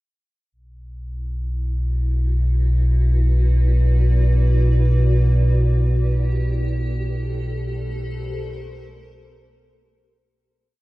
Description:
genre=dark ambient drone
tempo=free time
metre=none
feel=none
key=B phrygian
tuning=A4 = 435 Hz
part: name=granular cloud pad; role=sustained chords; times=2.0-10.4 s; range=E4 to D5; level=-30 LUFS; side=left 1 dB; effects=built-in reverb
part: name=deep rumbling drone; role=drone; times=1.0-10.5 s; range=B1 to B2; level=-18 LUFS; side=equal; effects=built-in reverb, lush chorus
room=light reverb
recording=dark, warm production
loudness=-17 LUFS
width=side -19 dB against mid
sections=0.6-10.4 A section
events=fade-in on ambient pad 0.6-10.4; fade-out 5.5-10.4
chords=0.6 Bm; 5.5 Gmadd9

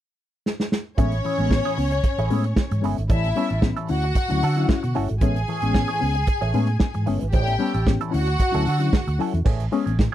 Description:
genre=disco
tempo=113 BPM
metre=4/4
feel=straight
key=A major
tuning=A4 = 440 Hz
part: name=warm soul drum kit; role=drums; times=0.5-10.1 s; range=crash cymbal, hi-hat, kick drum, snare drum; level=-21 LUFS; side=right 1 dB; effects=none
part: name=rich studio string section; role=second line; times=1.0-9.2 s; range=C#4 to G#5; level=-27 LUFS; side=equal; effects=none
part: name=direct-recorded clean electric guitar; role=accompaniment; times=1.0-10.1 s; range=E3 to A4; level=-31 LUFS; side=right 9 dB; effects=wah
part: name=reed electric piano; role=accompaniment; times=1.0-10.1 s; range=A2 to E4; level=-26 LUFS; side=left 7 dB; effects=tremolo
part: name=fingered electric bass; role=bass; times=1.0-10.1 s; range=G1 to D3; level=-23 LUFS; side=right 1 dB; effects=none
room=little or no reverb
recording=none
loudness=-20 LUFS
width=side -12 dB against mid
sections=1.0-9.5 A section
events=drum fill 0.4-1.0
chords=0.0 N.C.; 1.0 Amaj7; 3.1 A7; 3.9 Dmaj7; 5.2 Amaj7; 7.3 A7; 8.1 Dmaj7; 9.5 Amaj7

